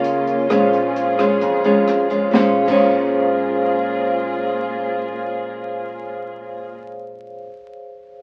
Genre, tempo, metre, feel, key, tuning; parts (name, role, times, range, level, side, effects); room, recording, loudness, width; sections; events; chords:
bossa nova; 131 BPM; 4/4; straight; Bb minor; A4 = 440 Hz
nylon-string guitar; accompaniment; 0.0-7.5 s; F2 to F4; -21 LUFS; equal
vibraphone with medium mallets; accompaniment; 0.0-8.2 s; Ab4 to F5; -24 LUFS; equal
dark symphonic string section; sustained chords; 0.0-6.8 s; Bb3 to Ab4; -31 LUFS; equal
upright bass; bass; 0.0-7.5 s; Bb1 to F2; -44 LUFS; equal
compact cocktail drum kit; drums; 0.0-2.8 s; crash cymbal, hi-hat, kick drum, rim click, snare drum; -26 LUFS; equal
wet studio reverb, RT60 0.9 s; very old 78 rpm record, vinyl crackle; -18 LUFS; mono
0.0-2.3 A section; 2.3-6.0 B section
0.5 Bbm7